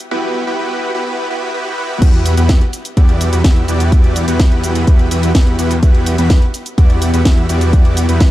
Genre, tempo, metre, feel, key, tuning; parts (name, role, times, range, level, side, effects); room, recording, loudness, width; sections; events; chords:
EDM, festival progressive house; 126 BPM; 4/4; straight; E minor; A4 = 440 Hz
house drum kit; drums; 0.0-8.3 s; crash cymbal, hi-hat, shaker, snare drum, toms; -21 LUFS; equal; high-pass filter on hats, high-pass filter on perc, high-pass filter on toms, high-pass filter on cymbals, high-pass filter on snare
dense compressed supersaw; riff; 0.1-8.3 s; B3 to E5; -18 LUFS; equal; sidechain pumping, tape echo
wide detuned saw bass; bass; 2.0-8.3 s; E2; -15 LUFS; equal; chorus, sidechain pumping
electronic kick drum; drums; 2.0-8.3 s; -10 LUFS; equal
little or no reverb; dark, warm production, high-pass filter; -11 LUFS; side -15 dB against mid
0.0-2.0 A section; 2.0-8.3 B section
build-up 0.0-2.0; drum fill 1.8; drop 2.0-8.3
0.0 Emadd9